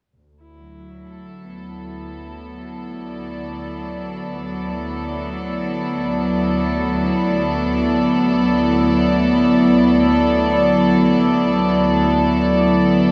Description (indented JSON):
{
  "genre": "ambient",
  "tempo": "free time",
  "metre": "none",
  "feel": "none",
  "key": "D major",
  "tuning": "A4 = 440 Hz",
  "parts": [
    { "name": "dark studio string section", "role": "sustained chords", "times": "0.2-13.1 s", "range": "D2 to D5", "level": "-19 LUFS", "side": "equal", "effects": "none" }
  ],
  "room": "wet cathedral reverb, RT60 5.1 s",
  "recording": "none",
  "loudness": "-17 LUFS",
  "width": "mono",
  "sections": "0.2-13.1 A section",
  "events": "fade-in on string section 0.2-13.1",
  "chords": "0.2 D69",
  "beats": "free time"
}